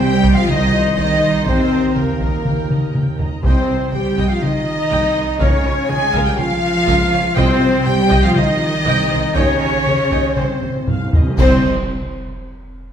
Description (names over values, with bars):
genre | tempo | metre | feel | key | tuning
cinematic, epic orchestral film score | 122 BPM | 4/4 | straight | C phrygian | A4 = 440 Hz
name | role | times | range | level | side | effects
warm symphonic violin section | melody | 0.0-11.7 s | Bb4 to Ab5 | -28 LUFS | left 3 dB | none
dark symphonic violin section | second line | 0.0-11.7 s | Bb4 to Ab5 | -25 LUFS | left 2 dB | none
small flute group | second line | 0.0-11.7 s | Bb4 to Ab5 | -24 LUFS | right 1 dB | none
rich symphonic viola section | accompaniment | 0.0-11.7 s | Db4 to C6 | -28 LUFS | right 1 dB | none
dark French horn section | sustained chords | 0.0-11.6 s | Bb3 to Ab4 | -20 LUFS | left 2 dB | none
mellow tuba | bass | 0.0-11.6 s | C2 to Eb2 | -25 LUFS | right 1 dB | none
rich symphonic cello section | bass | 0.0-11.7 s | Bb2 to C4 | -23 LUFS | right 2 dB | none
warm symphonic double bass section | bass | 0.0-11.7 s | C2 to Eb2 | -25 LUFS | right 3 dB | none
taiko ensemble | drums | 0.2-12.4 s | none | -20 LUFS | equal | none
timpani | percussion | 3.4-4.1, 7.4-11.6 s | C3 | -27 LUFS | equal | none
clash cymbals and concert bass drum | percussion | 11.4-12.4 s | none | -27 LUFS | equal | none
room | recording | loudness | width
wet recital hall reverb, RT60 1.7 s | recorded in a church or concert hall | -14 LUFS | side -8 dB against mid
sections
0.0-11.4 A section; 11.4-12.9 B section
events
drum fill 2.7-3.4, 10.6-11.4; timpani fill 10.4-11.4; band accent 11.4-11.9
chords
0.0 Cm; 1.5 Eb; 3.4 Cm; 5.4 Bbm/Db; 7.4 Cm; 9.4 Eb; 10.4 Cm